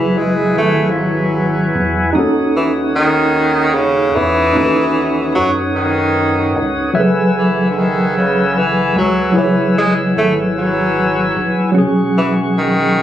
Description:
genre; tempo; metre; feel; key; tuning
slow six-eight R&B; 50 BPM (dotted quarters); 6/8; straight; F# dorian; A4 = 440 Hz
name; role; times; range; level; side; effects
warm tenor saxophone; melody; 0.0-13.0 s; C#3 to A3; -16 LUFS; equal; none
tine electric piano; accompaniment; 0.0-13.0 s; F#3 to E5; -16 LUFS; equal; overdrive, fast stereo tremolo
tonewheel organ; sustained chords; 0.0-13.0 s; G#4 to E6; -20 LUFS; left 1 dB; slow rotary speaker
rubbery square bass; bass; 0.0-13.0 s; E1 to F#2; -24 LUFS; left 1 dB; none
room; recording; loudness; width
light reverb, digital ambience; recorded on a phone in the room, club reverb, compression; -12 LUFS; side -11 dB against mid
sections
0.0-13.0 A section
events
none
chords
0.0 F#m11; 2.1 D#m7b5; 6.9 F#m11; 11.7 E69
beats
0.94 | 2.15 3.35 | 4.54 5.75 | 6.95 8.14 | 9.35 10.54 | 11.74 12.95

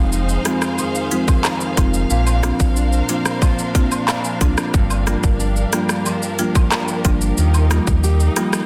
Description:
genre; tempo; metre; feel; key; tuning
dancehall; 91 BPM; 4/4; straight; unclear; A4 = 440 Hz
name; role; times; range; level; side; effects
dark studio string section; sustained chords; 0.0-8.7 s; D4 to F5; -29 LUFS; equal; sidechain pumping
nylon-string guitar; arpeggios; 0.0-8.7 s; F2 to G4; -28 LUFS; equal; none
sub bass with octave; bass; 0.0-8.3 s; F1 to Eb2; -20 LUFS; equal; none
island pop drum kit; drums; 0.1-8.7 s; handclaps, hi-hat, kick drum, rim click, shaker; -21 LUFS; equal; overdrive
marimba with medium mallets; accompaniment; 0.5-8.5 s; F3 to Ab5; -25 LUFS; equal; none
cabasa and woodblock; percussion; 0.5-8.5 s; none; -32 LUFS; equal; none
room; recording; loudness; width
small room ambience; dense, heavily limited modern master; -18 LUFS; mono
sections
0.0-8.7 A section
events
marimba fill 3.8-4.7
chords
0.0 Fm7; 2.1 Bbadd9; 4.7 Gm7; 7.4 Ebadd9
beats
0.12 0.79 1.44 | 2.10 2.76 3.42 4.08 | 4.74 5.40 6.06 6.72 | 7.38 8.04

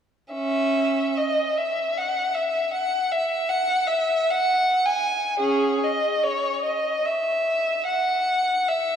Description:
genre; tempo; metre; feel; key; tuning
classical, free, expressive piece for unaccompanied violin; 45-81 BPM; 3/4; rubato; unclear; A4 = 440 Hz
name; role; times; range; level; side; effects
clear violin; solo; 0.3-9.0 s; C#4 to G#5; -21 LUFS; equal; none
room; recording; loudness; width
wet church reverb, RT60 3.3 s; dark, warm production; -21 LUFS; side -8 dB against mid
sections
0.3-5.4 A section; 5.4-9.0 B section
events
none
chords
none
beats
| 0.32 1.18 1.98 | 2.75 3.50 4.33 | 5.42 6.26 7.06 | 7.88 8.70

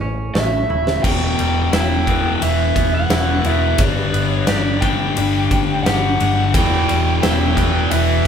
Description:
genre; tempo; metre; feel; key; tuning
quiet-loud alternative rock; 87 BPM; 4/4; straight; unclear; A4 = 440 Hz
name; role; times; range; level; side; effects
twangy electric guitar; arpeggios; 0.0-8.3 s; E2 to G4; -26 LUFS; right 3 dB; none
vintage muted fingered electric bass; bass; 0.0-8.2 s; Eb1 to A1; -21 LUFS; equal; none
lead guitar through a small cranked amp; melody; 0.3-8.3 s; D5 to G5; -22 LUFS; right 1 dB; overdrive
big rock drum kit; drums; 0.4-8.1 s; crash cymbal, hi-hat, kick drum, ride cymbal, snare drum, toms; -21 LUFS; equal; none
sludgy distorted guitar; riff; 1.0-8.3 s; E2 to G3; -20 LUFS; left 5 dB; overdrive
fuzz guitar; riff; 6.5-8.3 s; E2 to E3; -22 LUFS; right 6 dB; distortion
room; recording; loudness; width
moderate large studio reverb, RT60 1.2 s; band playing live in one room; -15 LUFS; side -7 dB against mid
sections
0.0-1.0 A section; 1.0-8.3 B section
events
drum fill 0.7-1.0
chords
0.0 A; 1.0 Em; 3.8 G; 6.5 Em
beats
0.35 | 1.04 1.73 2.42 3.11 | 3.79 4.48 5.17 5.85 | 6.54 7.22 7.91

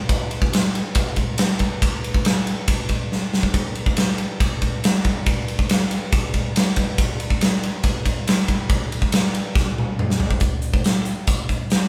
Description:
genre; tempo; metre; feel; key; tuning
rock; 140 BPM; 4/4; straight; none; none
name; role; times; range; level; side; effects
big rock drum kit; drums; 0.1-11.8 s; hi-hat, kick drum, ride cymbal, snare drum, toms; -21 LUFS; equal; none
room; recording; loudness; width
light reverb; band playing live in one room; -21 LUFS; mono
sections
0.0-10.4 A section; 10.4-11.9 B section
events
drum fill 3.1-3.5, 9.6-10.4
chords
none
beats
| 0.09 0.52 0.95 1.39 | 1.82 2.25 2.68 3.11 | 3.54 3.97 4.40 4.83 | 5.26 5.69 6.12 6.55 | 6.98 7.41 7.84 8.27 | 8.70 9.13 9.56 9.99 | 10.42 10.85 11.28 11.71

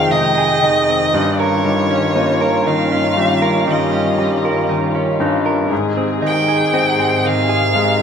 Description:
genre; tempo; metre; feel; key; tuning
pop ballad; 59 BPM; 4/4; straight; unclear; A4 = 438 Hz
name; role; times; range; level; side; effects
rich violin; melody; 0.0-8.0 s; Db5 to G5; -18 LUFS; right 1 dB; none
bright concert grand piano; accompaniment; 0.0-8.0 s; F2 to C4; -19 LUFS; left 5 dB; none
dark studio string section; sustained chords; 0.0-8.0 s; F2 to G5; -20 LUFS; left 2 dB; none
direct-recorded clean electric guitar; arpeggios; 0.0-8.0 s; Ab2 to Bb4; -20 LUFS; right 8 dB; wide subtle chorus
room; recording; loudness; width
moderate plate reverb, RT60 3.1 s; rough home demo mix; -13 LUFS; side -7 dB against mid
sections
0.0-8.0 A section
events
none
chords
0.0 Fm7; 1.1 Eb7/G; 5.7 Ab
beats
0.63 | 1.65 2.66 3.68 4.70 | 5.71 6.73 7.75

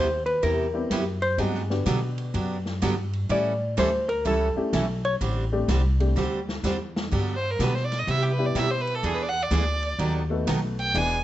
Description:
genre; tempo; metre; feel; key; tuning
country, western swing; 126 BPM; 4/4; swing 66% on 8ths; G major; A4 = 441 Hz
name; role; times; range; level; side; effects
hollow-body jazz guitar; melody; 0.0-5.1 s; A4 to D5; -25 LUFS; left 1 dB; none
picked steel-string acoustic guitar; accompaniment; 0.0-11.2 s; C3 to A4; -29 LUFS; right 3 dB; none
upright bass; bass; 0.0-11.2 s; E1 to C3; -27 LUFS; equal; none
swinging big-band drum kit; drums; 0.3-11.1 s; crash cymbal, hi-hat, kick drum, ride cymbal, snare drum; -35 LUFS; left 1 dB; none
dark upright piano; accompaniment; 0.7-11.2 s; D3 to A4; -30 LUFS; left 3 dB; none
clear fiddle; second line; 7.4-11.2 s; G4 to G#5; -27 LUFS; right 2 dB; none
room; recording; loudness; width
light reverb; nothing above 7.9 kHz; -23 LUFS; side -14 dB against mid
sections
0.0-7.1 A section; 7.1-11.2 A section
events
hollow-body jazz guitar solo 0.0-7.1; drum fill 6.2-7.1; fiddle solo 7.1-11.2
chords
0.0 Cmaj7; 1.4 Gmaj7; 3.3 A7; 5.2 D7sus4; 7.1 Gmaj7; 8.1 Cmaj7; 9.0 E7; 10.0 B7/D#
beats
0.43 0.91 | 1.38 1.86 2.34 2.82 | 3.30 3.77 4.25 4.73 | 5.21 5.69 6.16 6.64 | 7.12 7.60 8.08 8.55 | 9.03 9.51 9.99 10.47 | 10.95

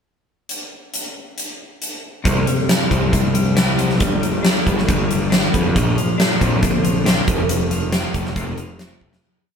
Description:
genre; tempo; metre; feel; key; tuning
quiet-loud alternative rock; 137 BPM; 4/4; straight; unclear; A4 = 440 Hz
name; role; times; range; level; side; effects
huge arena drum kit; drums; 0.5-9.2 s; hi-hat, kick drum, snare drum; -18 LUFS; right 1 dB; none
twelve-string electric guitar; arpeggios; 2.2-9.2 s; F2 to E4; -23 LUFS; left 5 dB; none
fuzz picked electric bass; bass; 2.3-9.2 s; F1 to F2; -22 LUFS; equal; overdrive
room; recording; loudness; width
light reverb; band playing live in one room; -15 LUFS; side -6 dB against mid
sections
0.5-2.3 pickup bar; 2.3-9.2 verse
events
fade-out 7.5-9.2; drum fill 9.0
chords
0.5 N.C.; 2.3 C; 4.0 G; 5.8 Bbadd9; 7.3 F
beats
| 0.49 0.93 1.37 1.81 | 2.25 2.69 3.13 3.57 | 4.01 4.44 4.88 5.32 | 5.75 6.19 6.62 7.06 | 7.49 7.93 8.36 8.80

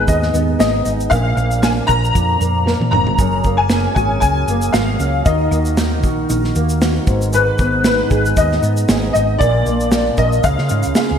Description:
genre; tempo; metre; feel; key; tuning
acoustic pop; 116 BPM; 4/4; swing 55% on 16ths; unclear; A4 = 442 Hz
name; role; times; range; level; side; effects
clear upright piano; melody; 0.0-11.2 s; B4 to A#5; -18 LUFS; left 2 dB; ensemble chorus, digital delay
nylon-string guitar; accompaniment; 0.0-11.2 s; F#2 to A#4; -20 LUFS; right 1 dB; ensemble chorus
tonewheel organ; sustained chords; 0.0-11.2 s; C#3 to A#4; -28 LUFS; right 1 dB; slow rotary speaker
hollow-body short-scale fingered electric bass; bass; 0.0-11.2 s; E#1 to C#3; -19 LUFS; equal; none
modern studio drum kit; drums; 0.1-11.1 s; kick drum, shaker, snare drum, toms; -19 LUFS; right 1 dB; gated reverb
room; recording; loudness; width
moderate lush hall reverb, RT60 1.9 s, studio reverb; bright 1980s-style digital production; -13 LUFS; side -8 dB against mid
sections
0.0-11.2 A section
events
drum fill 2.7-3.2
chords
0.0 G#m; 1.1 A#; 3.2 F#add9; 5.3 D#m; 7.1 G#m; 9.4 A#; 10.4 C#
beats
0.08 0.59 | 1.11 1.63 2.15 2.67 | 3.19 3.70 4.22 4.74 | 5.26 5.78 6.29 6.81 | 7.33 7.85 8.37 8.88 | 9.40 9.92 10.44 10.96

